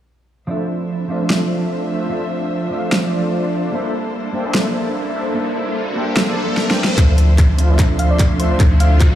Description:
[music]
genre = future bass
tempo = 148 BPM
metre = 4/4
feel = swing 56% on 16ths, half-time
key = unclear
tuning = A4 = 441 Hz
[part]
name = mellow electric guitar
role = accompaniment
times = 0.5-9.2 s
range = F3 to E5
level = -23 LUFS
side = right 2 dB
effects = phaser, sidechain pumping, dub echo
[part]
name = warm studio string section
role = sustained chords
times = 0.5-9.2 s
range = F3 to C6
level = -31 LUFS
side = left 2 dB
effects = sidechain pumping
[part]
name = soft supersaw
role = riff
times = 0.5-9.2 s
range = A3 to G5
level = -22 LUFS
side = equal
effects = vintage 12-bit sampler grit, sidechain pumping, low-pass filter, dub echo
[part]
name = big-room dance drum kit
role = drums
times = 1.3-9.1 s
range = handclaps, hi-hat, snare drum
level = -21 LUFS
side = equal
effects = overdrive
[part]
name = riser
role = sound effects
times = 5.0-9.2 s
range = none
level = -28 LUFS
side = equal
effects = none
[part]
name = warm 808-style bass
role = bass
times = 7.0-9.2 s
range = D2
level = -14 LUFS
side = equal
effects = sidechain pumping
[part]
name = electronic kick drum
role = drums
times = 7.0-9.1 s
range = none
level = -14 LUFS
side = equal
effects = none
[part]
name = soft struck synth lead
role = melody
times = 8.0-8.9 s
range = C5 to F5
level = -23 LUFS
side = equal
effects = chorus, sidechain pumping, ping-pong delay
[sound]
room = light reverb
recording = played on a big sound system in a bare room, large studio reverb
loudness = -15 LUFS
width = side -12 dB against mid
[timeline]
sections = 0.5-7.0 A section; 7.0-9.2 B section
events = riser 5.0-7.0, 7.0-9.2; drum fill 6.6-7.0, 7.0-9.2; build-up 7.0-9.2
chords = 0.5 Dm9; 3.7 C13; 7.0 Dm9

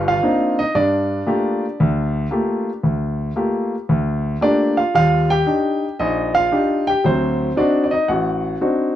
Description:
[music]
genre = solo jazz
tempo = 115 BPM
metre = 4/4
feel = swing 68% on 8ths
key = G minor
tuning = A4 = 441 Hz
[part]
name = warm baby grand piano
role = solo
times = 0.0-9.0 s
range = G1 to G5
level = -16 LUFS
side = equal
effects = none
[sound]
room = moderate studio reverb, RT60 0.6 s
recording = worn, warbling old tape, cassette tape, warbly pitch drift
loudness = -16 LUFS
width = side -12 dB against mid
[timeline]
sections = 0.0-9.0 A section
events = none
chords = 0.0 Cm9; 0.8 Gm9; 4.9 Ebmaj7; 7.0 D7b9

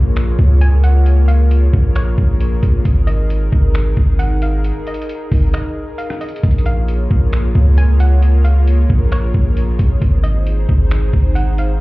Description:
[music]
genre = hip hop, atmospheric cloud-rap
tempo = 134 BPM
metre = 4/4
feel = half-time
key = Bb minor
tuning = A4 = 440 Hz
[part]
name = hollow square pluck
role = melody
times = 0.0-11.8 s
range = Db5 to Ab5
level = -30 LUFS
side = right 1 dB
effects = chorus, digital delay
[part]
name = airy breathy pad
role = sustained chords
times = 0.0-11.8 s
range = Bb3 to Db5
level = -24 LUFS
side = left 2 dB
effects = chorus, sidechain pumping
[part]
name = long sustained 808-style bass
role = bass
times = 0.0-11.8 s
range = Ab1 to Db2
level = -13 LUFS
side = equal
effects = none
[part]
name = trip hop sampler-style drum kit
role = drums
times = 0.2-11.7 s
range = finger snaps, hi-hat, kick drum, rim click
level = -16 LUFS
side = equal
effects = none
[sound]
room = digital ambience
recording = heard muffled through a wall, club reverb, EQ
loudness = -12 LUFS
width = side -20 dB against mid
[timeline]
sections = 0.0-11.8 A section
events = break 5.5-6.4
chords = 0.0 Bbm7; 2.9 Ab5; 6.4 Bbm7; 10.0 Ab

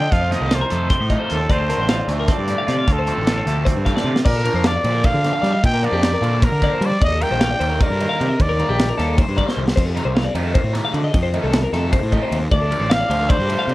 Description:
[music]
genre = math rock and midwest emo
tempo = 305 BPM (eighths)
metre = 7/8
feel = straight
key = unclear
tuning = A4 = 440 Hz
[part]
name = growling trumpet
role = melody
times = 0.0-9.2, 12.5-13.7 s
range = A4 to G5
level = -23 LUFS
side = equal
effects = none
[part]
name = twangy electric guitar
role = accompaniment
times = 0.0-4.3 s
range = A2 to A4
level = -29 LUFS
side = right 5 dB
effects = none
[part]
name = twelve-string electric guitar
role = arpeggios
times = 0.0-13.7 s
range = G4 to F5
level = -25 LUFS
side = left 4 dB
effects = harmonic tremolo
[part]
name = fuzz picked electric bass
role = bass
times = 0.0-13.7 s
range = A1 to G3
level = -21 LUFS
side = equal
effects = overdrive
[part]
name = modern studio drum kit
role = drums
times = 0.1-13.7 s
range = crash cymbal, hi-hat, kick drum, ride cymbal, snare drum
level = -21 LUFS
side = equal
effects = none
[part]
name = overdriven electric guitar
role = riff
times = 0.3-13.7 s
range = C3 to Eb4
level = -27 LUFS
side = right 1 dB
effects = phaser
[sound]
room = light reverb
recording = worn, warbling old tape, cassette tape, warbly pitch drift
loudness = -16 LUFS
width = side -17 dB against mid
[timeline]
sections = 0.0-4.3 A section; 4.3-13.7 B section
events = drum fill 4.0, 9.5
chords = 0.0 F7; 1.5 Dm7; 4.3 Bb6; 7.0 Ebmaj7; 9.8 F7; 12.5 Dm7

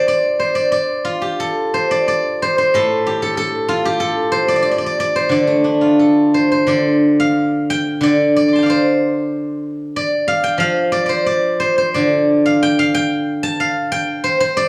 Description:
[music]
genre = chinese traditional, Chinese solo plucked strings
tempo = 86-96 BPM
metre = 2/4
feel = rubato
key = D yu mode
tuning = A4 = 441 Hz
[part]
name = steel-string zither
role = solo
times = 0.0-14.7 s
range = A2 to D6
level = -16 LUFS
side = equal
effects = none
[sound]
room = moderate recital hall reverb, RT60 1.3 s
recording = studio ambience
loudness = -16 LUFS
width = mono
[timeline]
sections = 0.0-6.7 A section; 6.7-14.7 B section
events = none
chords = none

